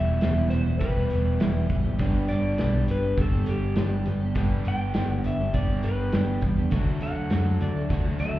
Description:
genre	folk rock and heartland rock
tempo	102 BPM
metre	4/4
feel	straight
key	G major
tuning	A4 = 438 Hz
part	clean lap steel guitar	melody	0.0-8.4 s	G4 to G5	-32 LUFS	left 2 dB	none
part	picked twelve-string acoustic guitar	accompaniment	0.0-8.4 s	E2 to G4	-30 LUFS	left 1 dB	none
part	crunchy overdriven guitar	riff	0.0-8.4 s	E2 to G4	-31 LUFS	right 2 dB	none
part	picked electric bass	bass	0.0-8.4 s	E1 to F#2	-26 LUFS	equal	none
part	loose indie drum kit	drums	0.2-8.3 s	hi-hat, kick drum, snare drum	-28 LUFS	equal	none
room	little or no reverb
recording	heard muffled through a wall, club reverb, EQ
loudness	-22 LUFS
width	side -15 dB against mid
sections	0.0-8.4 A section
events	none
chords	0.0 Em; 2.0 G; 6.7 D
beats	0.23 0.82 1.41 | 2.00 2.59 3.18 3.77 | 4.37 4.96 5.55 6.14 | 6.73 7.32 7.91

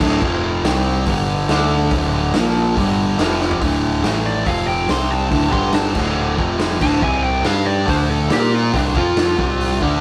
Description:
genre	garage rock duo or trio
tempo	141 BPM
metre	4/4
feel	straight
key	D minor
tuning	A4 = 440 Hz
part	fuzz guitar	riff	0.0-10.0 s	D2 to Bb4	-20 LUFS	equal	distortion
part	growling picked electric bass	bass	0.0-10.0 s	D1 to Bb2	-25 LUFS	equal	overdrive, tube saturation
part	raw garage drum kit	drums	0.0-9.9 s	crash cymbal, hi-hat, kick drum, snare drum, toms	-24 LUFS	equal	none
part	fuzz lead guitar	melody	4.3-9.8 s	D4 to C6	-25 LUFS	equal	distortion
room	light reverb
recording	band playing live in one room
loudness	-18 LUFS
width	mono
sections	0.0-3.6 A section; 3.6-10.0 B section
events	drum fill 3.4; lead electric guitar solo 3.6-10.0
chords	0.0 D5; 0.2 F5; 0.6 C5; 1.1 G5; 1.5 D5; 2.3 Bb5; 2.8 G5; 3.2 F5; 3.6 D5; 4.0 A5; 4.5 F5; 4.9 C5; 5.3 D5; 5.5 G5; 6.0 D5; 6.4 F5; 6.8 D5; 7.0 C5; 7.5 G5; 7.9 D5; 8.3 Bb5; 8.7 C5; 9.0 F5; 9.4 C5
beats	| 0.21 0.64 1.06 1.49 | 1.92 2.34 2.77 3.19 | 3.62 4.04 4.47 4.90 | 5.33 5.75 6.18 6.61 | 7.03 7.46 7.89 8.31 | 8.74 9.17 9.60

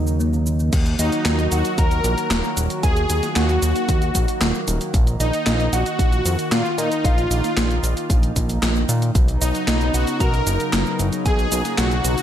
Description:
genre	synthwave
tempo	114 BPM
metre	4/4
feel	straight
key	Eb minor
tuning	A4 = 440 Hz
part	soft supersaw	melody	0.0-12.2 s	Eb4 to Bb4	-25 LUFS	left 1 dB	digital delay
part	chorused pulse-width pad	sustained chords	0.0-12.2 s	Db3 to Gb4	-27 LUFS	right 1 dB	sidechain pumping
part	fat analog bass	bass	0.0-12.2 s	Eb1 to Bb2	-21 LUFS	equal	sidechain pumping
part	gated 80s digital drum machine	drums	0.1-12.2 s	crash cymbal, handclaps, hi-hat, shaker, snare drum	-24 LUFS	equal	gated reverb, gated reverb snare, small room ambience
part	thumb-piano-like synth pluck	arpeggios	0.2-0.6 s	Db3 to Bb3	-30 LUFS	left 2 dB	chorus, digital delay
part	electronic kick drum	drums	0.7-11.4 s	none	-19 LUFS	equal	small room ambience
part	soft synth bell	second line	1.0-12.2 s	Eb5 to Bb5	-30 LUFS	left 1 dB	chorus, phaser, digital delay
room	light reverb, digital ambience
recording	none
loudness	-17 LUFS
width	side -10 dB against mid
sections	0.7-12.2 A section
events	none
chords	0.0 Ebm7; 0.7 Ebm; 4.9 Bbsus4; 9.2 Badd9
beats	0.20 | 0.73 1.25 1.78 2.31 | 2.83 3.36 3.89 4.41 | 4.94 5.47 5.99 6.52 | 7.04 7.57 8.10 8.62 | 9.15 9.68 10.20 10.73 | 11.26 11.78

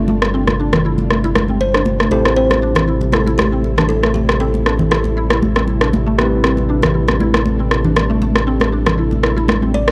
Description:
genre	afro house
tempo	118 BPM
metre	4/4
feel	swing 53% on 16ths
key	A minor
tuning	A4 = 440 Hz
part	ethereal airy pad	sustained chords	0.0-9.9 s	C3 to A4	-25 LUFS	equal	ensemble chorus, built-in reverb
part	mallet-like synth pluck	arpeggios	0.0-9.9 s	A3 to E4	-25 LUFS	equal	ensemble chorus, analog delay
part	tine electric piano	stabs	0.0-9.9 s	C4 to C5	-26 LUFS	equal	analog delay
part	round analog bass	bass	0.0-9.9 s	G1 to A1	-22 LUFS	equal	none
part	congas	percussion	0.1-9.9 s	none	-23 LUFS	equal	none
part	electronic rim click	drums	0.2-9.9 s	none	-20 LUFS	equal	none
part	kalimba	melody	1.6-5.4, 9.7-9.9 s	G4 to D5	-24 LUFS	equal	analog delay
room	light reverb, digital ambience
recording	dry, gritty hardware recording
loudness	-15 LUFS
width	mono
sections	0.0-9.9 A section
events	none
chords	0.0 G9sus4; 2.1 Am9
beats	| 0.08 0.59 1.10 1.61 | 2.12 2.62 3.13 3.64 | 4.15 4.66 5.17 5.68 | 6.18 6.69 7.20 7.71 | 8.22 8.73 9.23 9.74

